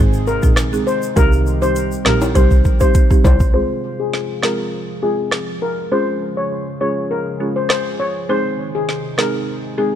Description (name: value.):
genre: dancehall.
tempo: 101 BPM.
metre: 4/4.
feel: straight.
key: F minor.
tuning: A4 = 440 Hz.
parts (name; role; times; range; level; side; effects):
folk marimba with medium mallets; accompaniment; 0.0-9.9 s; G3 to Ab4; -22 LUFS; right 4 dB; low-pass filter.
warm analog pad; sustained chords; 0.0-10.0 s; C3 to Ab4; -27 LUFS; right 1 dB; chorus, sidechain pumping, low-pass filter.
rich double bass; bass; 0.0-3.5 s; Ab1 to C2; -18 LUFS; equal; none.
egg shaker and timbales; percussion; 0.1-3.5 s; none; -28 LUFS; left 4 dB; none.
steel pan; melody; 0.3-9.9 s; Ab4 to Db5; -21 LUFS; left 5 dB; low-pass filter, digital delay.
afro-pop drum kit; drums; 0.4-9.3 s; hi-hat, kick drum, rim click, snare drum; -16 LUFS; equal; vintage 12-bit sampler grit.
room: small room ambience.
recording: dark, warm production.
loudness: -15 LUFS.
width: side -10 dB against mid.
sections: 0.0-3.5 A section; 3.5-10.0 B section.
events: drum fill 2.4-3.5; filter sweep 3.5-10.0.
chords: 0.0 Ab; 1.2 Cm; 3.5 Fm; 5.9 Db; 8.3 Ab.